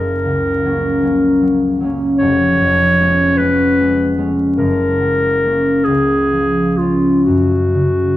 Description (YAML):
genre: classical, romantic duo for clarinet and harp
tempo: 42-52 BPM (dotted quarters)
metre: 6/8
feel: rubato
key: F# major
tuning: A4 = 439 Hz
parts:
  - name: mellow clarinet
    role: melody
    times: 0.0-8.2 s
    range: E#4 to C#5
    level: -16 LUFS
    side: equal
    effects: none
  - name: concert harp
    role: accompaniment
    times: 0.0-8.2 s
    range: E#1 to C#4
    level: -14 LUFS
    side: equal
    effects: none
room: wet recital hall reverb, RT60 1.5 s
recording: dark, warm production, vinyl crackle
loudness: -12 LUFS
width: side -14 dB against mid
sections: 0.0-8.2 A section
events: none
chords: 0.0 F#; 2.2 C#7/E#; 4.6 F#; 5.9 C#7; 7.3 F#5